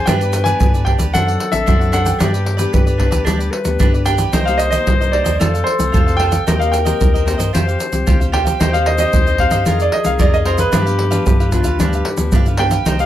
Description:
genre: samba and choro.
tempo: 113 BPM.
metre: 4/4.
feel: straight.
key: unclear.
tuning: A4 = 440 Hz.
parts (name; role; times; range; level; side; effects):
clear baby grand piano; melody; 0.0-13.1 s; B4 to Ab5; -20 LUFS; right 2 dB; plate reverb.
clear clarinet; second line; 0.0-12.6 s; F4 to C5; -22 LUFS; left 5 dB; none.
cavaquinho; accompaniment; 0.0-13.1 s; D4 to F#5; -26 LUFS; right 4 dB; none.
nylon-string guitar; accompaniment; 0.0-13.1 s; G2 to Bb4; -24 LUFS; left 4 dB; none.
warm sub bass; bass; 0.1-13.1 s; A1 to G2; -19 LUFS; equal; none.
egg shaker, surdo and pandeiro; percussion; 0.1-13.1 s; none; -17 LUFS; equal; none.
room: light reverb.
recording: close, detailed microphones.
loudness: -13 LUFS.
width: side -12 dB against mid.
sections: 0.0-12.9 A section.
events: none.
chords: 0.1 G; 1.1 D7; 2.2 G; 4.3 Cm7; 5.4 F; 6.5 Cm7/Eb; 7.5 Fsus2; 8.6 Cm/Eb; 9.7 F7sus4; 10.7 G7.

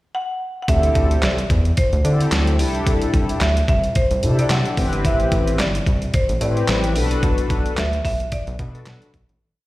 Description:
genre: early-eighties boogie funk.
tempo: 110 BPM.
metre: 4/4.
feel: swing 56% on 16ths.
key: unclear.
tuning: A4 = 440 Hz.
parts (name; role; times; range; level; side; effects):
marimba with hard mallets; melody; 0.1-9.1 s; A4 to F#5; -25 LUFS; equal; slapback echo.
mellow synth brass; accompaniment; 0.7-9.1 s; C4 to B4; -24 LUFS; left 3 dB; chorus, slapback echo.
rubbery square bass; bass; 0.7-9.4 s; G1 to D3; -20 LUFS; equal; none.
detuned 8-bit digital drum machine; drums; 0.7-9.4 s; handclaps, hi-hat, kick drum, snare drum; -22 LUFS; equal; none.
room: little or no reverb.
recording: live gig heard through the venue's PA, recital hall reverb.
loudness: -17 LUFS.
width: side -17 dB against mid.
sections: 0.0-0.7 pickup bar; 0.7-9.4 verse.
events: fade-out 7.2-9.4.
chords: 0.0 N.C.; 0.7 C69; 4.8 Am9; 7.0 Bm7.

